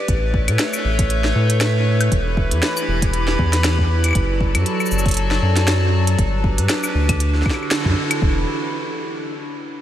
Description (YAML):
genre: IDM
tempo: 118 BPM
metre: 4/4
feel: swing 56% on 16ths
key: E dorian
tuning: A4 = 440 Hz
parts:
  - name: warbly tape-like pad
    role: sustained chords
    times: 0.0-8.5 s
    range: D3 to B5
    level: -22 LUFS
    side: equal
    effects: chorus, built-in reverb
  - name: round analog bass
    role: bass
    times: 0.1-8.5 s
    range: E1 to A2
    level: -18 LUFS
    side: equal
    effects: none
  - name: electronic kick drum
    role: drums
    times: 0.1-8.4 s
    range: none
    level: -20 LUFS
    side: equal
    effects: small room ambience
  - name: glitchy drum kit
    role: drums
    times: 0.1-8.2 s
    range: cabasa, claves, hi-hat, snare drum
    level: -24 LUFS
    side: equal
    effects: small room ambience, diffuse ambient delay
room: moderate huge ambient reverb, RT60 7.8 s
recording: dreamy mix soaked in reverb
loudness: -16 LUFS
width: side -11 dB against mid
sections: 0.0-8.2 A section; 8.2-9.8 B section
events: band accent 7.7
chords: 0.1 Aadd9; 2.1 Em; 4.2 D/F#; 6.2 G; 7.2 Dadd9; 8.2 Em